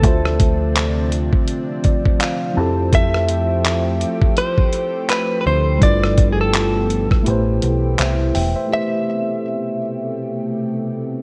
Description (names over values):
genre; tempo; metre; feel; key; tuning
contemporary R&B; 83 BPM; 4/4; swing 58% on 16ths; A minor; A4 = 442 Hz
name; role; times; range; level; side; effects
direct-recorded clean electric guitar; melody; 0.0-11.2 s; G#4 to E5; -24 LUFS; equal; digital delay
mellow tine electric piano; accompaniment; 0.0-11.2 s; D3 to A5; -25 LUFS; equal; none
lush unison pad; sustained chords; 0.0-11.2 s; B2 to G4; -28 LUFS; equal; chorus, sidechain pumping
deep dub picked electric bass; bass; 0.0-8.5 s; E1 to F2; -22 LUFS; equal; none
dusty soul sampler-style drum kit; drums; 0.0-8.5 s; handclaps, hi-hat, kick drum, rim click; -20 LUFS; equal; none
room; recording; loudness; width
light reverb; worn, warbling old tape, cassette tape, warbly pitch drift; -18 LUFS; mono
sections
0.0-8.7 A section; 8.7-11.2 B section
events
tine electric piano fill 1.5-2.9; break 7.3-8.7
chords
0.0 Dm9; 2.6 Fmaj9; 5.8 G13; 7.3 Am9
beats
| 0.04 0.76 1.48 2.20 | 2.93 3.65 4.37 5.09 | 5.82 6.54 7.26 7.99 | 8.71 9.43 10.15 10.88